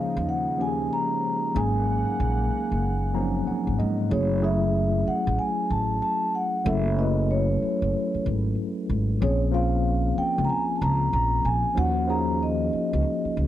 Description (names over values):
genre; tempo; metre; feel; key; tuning
R&B, neo-soul; 94 BPM; 4/4; swing 63% on 16ths; unclear; A4 = 441 Hz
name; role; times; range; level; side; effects
vibraphone with soft mallets; melody; 0.0-13.3 s; Db5 to Bb5; -27 LUFS; equal; slapback echo
tine electric piano; accompaniment; 0.0-13.5 s; F3 to Bb5; -27 LUFS; left 1 dB; medium stereo tremolo
warm analog pad; sustained chords; 0.0-4.1 s; Db3 to Gb5; -35 LUFS; equal; chorus
upright bass; bass; 0.2-13.5 s; Gb1 to Ab2; -26 LUFS; equal; none
room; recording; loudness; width
little or no reverb; dry, close 1970s-style studio recording; -22 LUFS; side -12 dB against mid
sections
0.0-4.1 A section; 4.1-13.5 B section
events
tine electric piano fill 2.8-4.1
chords
0.0 Eb9sus4; 1.5 Ab9sus4; 4.1 Gbm9; 9.2 Bbm9; 11.8 Ebm9